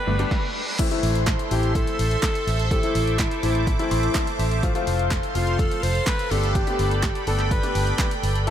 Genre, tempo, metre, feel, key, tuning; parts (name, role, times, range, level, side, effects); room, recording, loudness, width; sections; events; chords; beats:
dance-pop; 125 BPM; 4/4; straight; A minor; A4 = 440 Hz
warm alto saxophone; melody; 0.0-8.2 s; E4 to C5; -29 LUFS; equal; tape echo
sweeping resonant pad; sustained chords; 0.0-8.5 s; A4 to D6; -29 LUFS; right 2 dB; chorus, sidechain pumping
reverse cymbal; sound effects; 0.1-0.8 s; -34 LUFS; right 1 dB
warm concert grand piano; accompaniment; 0.1-8.5 s; E3 to C6; -28 LUFS; left 5 dB; sidechain pumping
vintage muted fingered electric bass; bass; 0.1-8.5 s; F1 to A1; -24 LUFS; equal; sidechain pumping
punchy analog drum machine; drums; 0.2-8.5 s; crash cymbal, handclaps, hi-hat, kick drum, snare drum; -26 LUFS; equal; overdrive
group handclap; percussion; 1.3-8.1 s; -37 LUFS; right 5 dB
moderate huge ambient reverb, RT60 4.9 s; dreamy mix soaked in reverb; -20 LUFS; side -10 dB against mid
0.8-8.5 A section
reverse cymbal 0.1-0.8; stop 0.3-0.8; grand piano fill 3.7-4.6
0.0 Gadd9; 0.8 Am; 4.6 F; 6.3 Gadd9
0.31 | 0.79 1.27 1.75 2.23 | 2.71 3.19 3.67 4.15 | 4.63 5.11 5.59 6.07 | 6.55 7.03 7.51 7.99 | 8.47